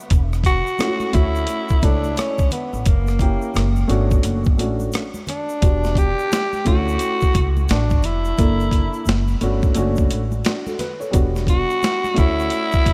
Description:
hip hop, jazz-hop; 87 BPM; 4/4; swing 63% on 16ths; A4 = 440 Hz
upright bass; bass; 0.1-12.9 s; E1 to D2; -23 LUFS; equal
boom bap sampler-style drum kit; drums; 0.1-12.9 s; hi-hat, kick drum, rim click, snare drum; -21 LUFS; equal
tube shaker and congas; percussion; 0.1-12.9 s; -37 LUFS; equal
growling tenor saxophone; melody; 0.5-12.9 s; A#3 to G4; -25 LUFS; equal; analog delay
dark upright piano; accompaniment; 0.8-12.9 s; G3 to C#5; -28 LUFS; equal
light reverb, studio reverb; -19 LUFS; mono
0.0-12.9 A section
0.1 Esus2; 1.1 Dmaj9; 2.9 F#7; 3.6 F#; 4.2 Dmaj7/F#; 5.6 Em9; 6.7 Dmaj9; 8.4 F#7alt; 9.1 F#5; 9.8 F#madd11; 11.1 Em9; 12.2 Dmaj9

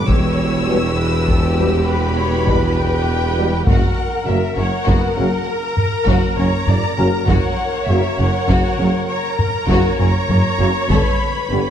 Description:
cinematic, epic orchestral film score; 66 BPM (dotted quarters); 12/8; straight; A4 = 438 Hz
warm symphonic violin section; melody; 0.0-11.7 s; E5 to E6; -25 LUFS; left 2 dB
warm symphonic violin section; second line; 0.0-11.7 s; A#3 to B4; -24 LUFS; left 4 dB
clear symphonic viola section; accompaniment; 0.0-11.7 s; B3 to D5; -25 LUFS; right 1 dB
clear studio double bass section; bass; 0.0-11.6 s; E1 to G1; -22 LUFS; right 2 dB
mellow tuba; bass; 0.0-11.6 s; E1 to G1; -24 LUFS; right 2 dB
rich symphonic cello section; bass; 0.0-11.6 s; E2 to G2; -22 LUFS; right 1 dB
taiko ensemble; drums; 0.1-11.5 s; -19 LUFS; equal
dark French horn section; sustained chords; 0.7-11.6 s; A#3 to B4; -27 LUFS; left 4 dB
mellow trombone section; sustained chords; 0.7-11.6 s; B2 to G3; -27 LUFS; right 2 dB
moderate scoring stage reverb, RT60 2.1 s; dark, warm production; -14 LUFS; side -9 dB against mid
0.0-11.7 A section
0.1 Em; 3.7 F#; 10.9 Gadd9

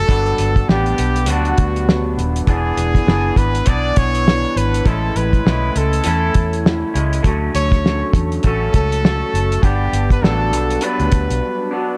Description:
indie pop, bedroom pop; 101 BPM; 4/4; swing 60% on 16ths; A4 = 440 Hz
bright trumpet; melody; 0.0-11.7 s; F#4 to D5; -24 LUFS; equal; subtle chorus
electric guitar through a small old amp; accompaniment; 0.0-12.0 s; G2 to G#4; -24 LUFS; equal; subtle chorus, vibrato effect
vintage muted fingered electric bass; bass; 0.0-11.4 s; D#1 to E2; -22 LUFS; equal
cloth-damped thuddy drum kit; drums; 0.1-11.4 s; hi-hat, kick drum, snare drum; -19 LUFS; equal
light reverb, studio ambience; dark, warm production; -17 LUFS; mono
0.0-12.0 A section
break 11.4-12.0
0.1 Gmaj7; 2.5 E7; 4.9 Amaj7; 7.2 Dmaj7; 9.6 Gmaj7

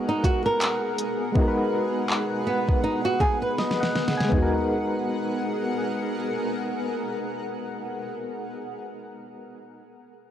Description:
contemporary R&B; 81 BPM; 4/4; swing 58% on 16ths; G# minor; A4 = 440 Hz
soft electric-piano-like synth keys; accompaniment; 0.0-9.8 s; G#3 to G#5; -28 LUFS; left 1 dB; chorus, tremolo
granular cloud pad; sustained chords; 0.0-8.0 s; B3 to F#5; -30 LUFS; equal; built-in reverb
flamenco guitar; arpeggios; 0.1-4.3 s; B3 to B4; -26 LUFS; right 2 dB; analog delay
smooth R&B drum kit; drums; 0.2-4.5 s; handclaps, hi-hat, kick drum, snare drum, toms; -24 LUFS; equal
little or no reverb; dry, gritty hardware recording, cassette tape, lossy compression artefacts; -23 LUFS; side -10 dB against mid
0.0-4.3 A section; 4.3-7.3 B section
drum fill 3.6-4.3
0.0 G#m9

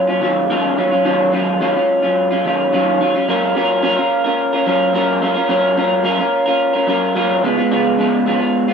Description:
indie pop; 108 BPM; 4/4; straight; F# major; A4 = 440 Hz
electric guitar through a small old amp; solo; 0.0-8.7 s; C#3 to A#4; -14 LUFS; equal; analog chorus, warbly pitch drift
little or no reverb; dry, close 1970s-style studio recording; -14 LUFS; side -6 dB against mid
0.0-8.7 A section
0.0 D#m9; 3.3 F#maj7; 7.4 C#7

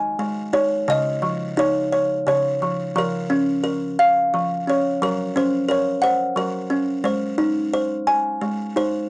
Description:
children's music, lullaby; 87 BPM; 3/4; straight; Db major; A4 = 441 Hz
buzzing kalimba; solo; 0.0-9.1 s; Db3 to Ab5; -18 LUFS; equal; cassette tape
light reverb; home recording on cassette, nothing above 10.5 kHz; -18 LUFS; side -27 dB against mid
0.0-9.1 A section
0.0 Ab5; 0.9 Dbadd9; 3.0 Bbm; 5.0 Gb; 7.0 Ab

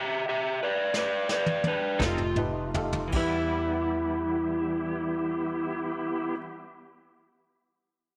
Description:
slow blues; 51-60 BPM (dotted quarters); 12/8; straight; E minor; A4 = 440 Hz
overdriven slide guitar; melody; 0.0-6.4 s; D4 to E5; -31 LUFS; equal
vintage brush drum kit; drums; 0.9-3.3 s; crash cymbal, kick drum, snare drum, toms; -34 LUFS; equal
clear upright piano; accompaniment; 2.0-6.4 s; Eb4 to A5; -39 LUFS; equal
electric guitar through a small old amp; accompaniment; 2.0-6.8 s; E3 to A4; -40 LUFS; equal; tremolo
bright tonewheel organ; sustained chords; 2.0-6.4 s; A3 to G4; -37 LUFS; equal; slow rotary speaker, chorus vibrato
upright bass; bass; 2.0-6.3 s; F1 to E2; -38 LUFS; equal
moderate echo chamber reverb, RT60 1.9 s, small room ambience; -29 LUFS; mono
0.0-3.1 A section; 3.1-7.9 B section
slowing down 0.0-3.1; stop 0.0-2.0; drum fill 0.9-3.1; upright piano fill 2.0-3.1
0.0 Em; 2.0 F7; 3.1 Em

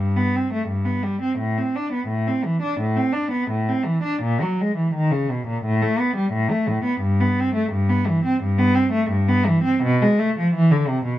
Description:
classical, baroque-style suite movement for unaccompanied cello; 86 BPM; 4/4; rubato; E minor; A4 = 440 Hz
warm cello; solo; 0.0-11.2 s; G2 to D4; -18 LUFS; equal
light reverb; dark, warm production; -18 LUFS; side -14 dB against mid
0.0-11.2 A section

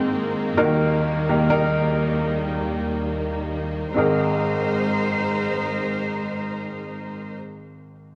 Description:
pop; free time; Ab major; A4 = 437 Hz
clear upright piano; accompaniment; 0.0-8.2 s; Ab1 to C5; -26 LUFS; equal; slapback echo
warm studio string section; sustained chords; 0.0-7.3 s; Eb2 to C5; -26 LUFS; equal
moderate lush hall reverb, RT60 2.7 s; live gig heard through the venue's PA, club reverb; -23 LUFS; mono
0.0-4.0 A section; 4.0-7.2 B section
slowing down 0.0-4.0
0.0 Abadd9; 0.6 Eb; 4.0 Abadd9

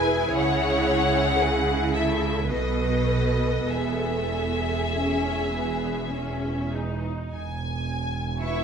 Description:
classical, slow romantic movement for string orchestra; 48-59 BPM; 3/4; rubato; E major; A4 = 442 Hz
clear symphonic violin section; melody; 0.0-8.6 s; D#5 to C#6; -29 LUFS; left 4 dB
warm studio violin section; second line; 0.0-8.6 s; G#4 to E5; -29 LUFS; left 1 dB
clear symphonic viola section; accompaniment; 0.0-8.6 s; B3 to A4; -28 LUFS; right 1 dB
rich symphonic cello section; bass; 0.0-8.6 s; E2 to E4; -30 LUFS; right 3 dB
rich symphonic double bass section; bass; 0.0-8.6 s; E1 to C#2; -29 LUFS; right 3 dB
wet scoring stage reverb, RT60 1.5 s; minimal, uncompressed stereo recording; -22 LUFS; side -7 dB against mid
0.0-7.3 A section; 7.3-8.6 A section
0.4 C#m; 2.5 B7; 3.7 E

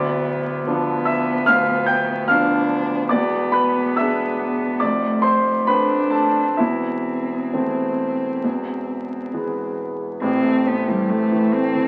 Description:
classical, romantic duo for cello and grand piano; 64-75 BPM; 4/4; rubato; A minor; A4 = 440 Hz
warm cello; melody; 0.0-11.9 s; G3 to D4; -26 LUFS; equal
clear concert grand piano; accompaniment; 0.0-11.9 s; D1 to G6; -22 LUFS; equal
moderate large studio reverb, RT60 0.9 s; very old 78 rpm record, vinyl crackle; -20 LUFS; mono
0.0-10.2 A section; 10.2-11.9 B section
0.0 Bdim/D; 3.1 E7; 4.8 F; 6.6 Am/E; 8.4 E; 10.2 Am

